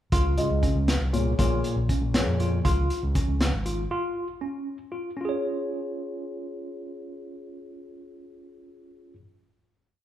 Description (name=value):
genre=progressive instrumental, band music in an uneven meter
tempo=238 BPM (eighths)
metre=5/8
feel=straight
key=Db major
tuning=A4 = 440 Hz
part: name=tine electric piano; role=arpeggios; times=0.1-9.2 s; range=Db4 to Db5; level=-32 LUFS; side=equal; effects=medium stereo tremolo
part: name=overdriven fingered electric bass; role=bass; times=0.1-3.8 s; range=Ab1 to F2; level=-26 LUFS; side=equal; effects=none
part: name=crunchy breakbeat drum kit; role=drums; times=0.1-3.8 s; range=hi-hat, kick drum, snare drum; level=-26 LUFS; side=equal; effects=none
part: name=dark grand piano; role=accompaniment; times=0.4-2.6 s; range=Bb2 to Eb5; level=-28 LUFS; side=left 2 dB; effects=none
room=moderate large studio reverb, RT60 1.3 s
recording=band playing live in one room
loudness=-24 LUFS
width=side -12 dB against mid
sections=0.1-5.2 groove; 5.2-7.7 final chord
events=none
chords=0.1 Dbadd9; 1.4 Bbm7; 2.6 Db